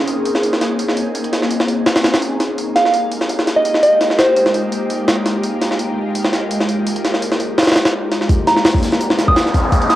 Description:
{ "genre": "drum and bass, jungle", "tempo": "168 BPM", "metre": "4/4", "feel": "straight", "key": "Bb minor", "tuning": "A4 = 440 Hz", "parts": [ { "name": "ethereal airy pad", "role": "sustained chords", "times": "0.0-10.0 s", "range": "Ab3 to Ab4", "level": "-20 LUFS", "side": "left 1 dB", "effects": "ensemble chorus, built-in reverb, phaser, cassette tape" }, { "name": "jungle sampler-style drum kit", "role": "drums", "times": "0.1-10.0 s", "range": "hi-hat, kick drum, snare drum", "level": "-16 LUFS", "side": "equal", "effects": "high-pass filter on hats, cassette tape, high-pass filter on snare, high-pass filter on kick, high-pass filter on room" }, { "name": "soft synth bell", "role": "melody", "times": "2.8-4.7, 8.5-10.0 s", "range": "C5 to Eb6", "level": "-16 LUFS", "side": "right 1 dB", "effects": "chorus, vintage 12-bit sampler grit, low-pass filter, cassette tape, dub echo" }, { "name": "gated 80s drum kit", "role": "drums", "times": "8.3-10.0 s", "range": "hi-hat, shaker, snare drum", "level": "-31 LUFS", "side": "equal", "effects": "high-pass filter on hats, cassette tape, high-pass filter on snare, high-pass filter on perc, high-pass filter on room" }, { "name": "riser", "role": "sound effects", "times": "8.8-10.0 s", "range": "none", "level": "-21 LUFS", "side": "left 2 dB", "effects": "none" } ], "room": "moderate digital room reverb, RT60 1.0 s, small room ambience", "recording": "home recording on cassette, vinyl crackle", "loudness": "-14 LUFS", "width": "side -14 dB against mid", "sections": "0.0-8.3 A section; 8.3-10.0 B section", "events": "build-up 8.3-10.0; filter sweep on ambient pad 8.3-10.0; filter sweep on synth bell 8.3-10.0; riser 8.8-10.0", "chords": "0.0 Bbm11; 2.6 Fm11; 8.3 Bbm11" }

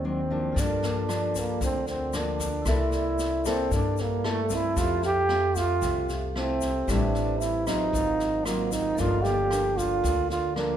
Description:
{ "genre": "bossa nova", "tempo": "114 BPM", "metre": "4/4", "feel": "straight", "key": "unclear", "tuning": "A4 = 443 Hz", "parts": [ { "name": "breathy trombone", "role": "melody", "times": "0.0-10.8 s", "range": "A3 to G4", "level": "-27 LUFS", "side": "right 2 dB", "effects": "none" }, { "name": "nylon-string guitar", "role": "accompaniment", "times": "0.0-10.8 s", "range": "G2 to A4", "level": "-32 LUFS", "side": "left 2 dB", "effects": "none" }, { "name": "vibraphone with medium mallets", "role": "accompaniment", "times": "0.0-10.8 s", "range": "E4 to E#5", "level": "-35 LUFS", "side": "right 2 dB", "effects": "none" }, { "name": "upright bass", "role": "bass", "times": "0.0-10.8 s", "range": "G1 to G2", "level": "-31 LUFS", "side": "left 1 dB", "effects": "none" }, { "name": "jazz brush drum kit", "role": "drums", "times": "0.6-10.7 s", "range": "kick drum, rim click, snare drum", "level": "-34 LUFS", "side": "left 1 dB", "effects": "none" }, { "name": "tube shaker", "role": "percussion", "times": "0.6-10.6 s", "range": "none", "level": "-41 LUFS", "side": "left 10 dB", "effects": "none" } ], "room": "moderate concert hall reverb, RT60 1.8 s", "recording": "recorded in a church or concert hall", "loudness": "-24 LUFS", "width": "side -10 dB against mid", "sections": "0.0-10.8 A section", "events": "none", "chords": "0.0 G#7#11 (rootless); 0.6 Gm7; 2.7 C13; 4.8 Fmaj7; 6.9 Am7; 7.9 G#13; 9.0 Gm7" }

